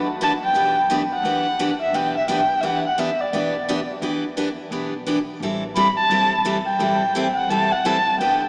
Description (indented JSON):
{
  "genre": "acoustic string swing (jazz manouche)",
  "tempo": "173 BPM",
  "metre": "4/4",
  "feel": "swing 62% on 8ths",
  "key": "E minor",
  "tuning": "A4 = 441 Hz",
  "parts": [
    { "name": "picked steel-string acoustic guitar", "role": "accompaniment", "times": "0.0-8.4 s", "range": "E3 to A4", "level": "-26 LUFS", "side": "equal", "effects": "none" },
    { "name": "upright bass", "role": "bass", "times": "0.0-8.5 s", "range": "E1 to E2", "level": "-42 LUFS", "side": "equal", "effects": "none" },
    { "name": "dark erhu", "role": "melody", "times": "0.2-8.5 s", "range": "D5 to B5", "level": "-22 LUFS", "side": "equal", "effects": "none" }
  ],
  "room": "wet cathedral reverb, RT60 5.9 s",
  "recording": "in a vast, echoing space, small speaker sound",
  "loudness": "-21 LUFS",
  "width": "mono",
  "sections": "0.0-8.5 A section",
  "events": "none",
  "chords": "0.0 Em7; 5.4 Am7"
}